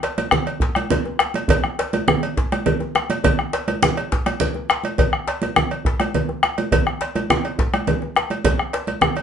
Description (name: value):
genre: west african traditional, West African drum ensemble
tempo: 138 BPM (dotted quarters)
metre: 12/8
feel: straight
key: none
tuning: none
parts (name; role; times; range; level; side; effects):
- cowbell; percussion; 0.0-9.2 s; none; -25 LUFS; right 3 dB; none
- djembe; percussion; 0.0-9.2 s; none; -25 LUFS; left 3 dB; none
- congas; percussion; 0.2-9.2 s; none; -23 LUFS; right 4 dB; none
- bombo; percussion; 0.3-9.2 s; none; -19 LUFS; left 2 dB; none
room: wet studio ambience, RT60 0.5 s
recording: band playing live in one room, nothing above 11.0 kHz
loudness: -18 LUFS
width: side -8 dB against mid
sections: 0.0-9.2 A section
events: none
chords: none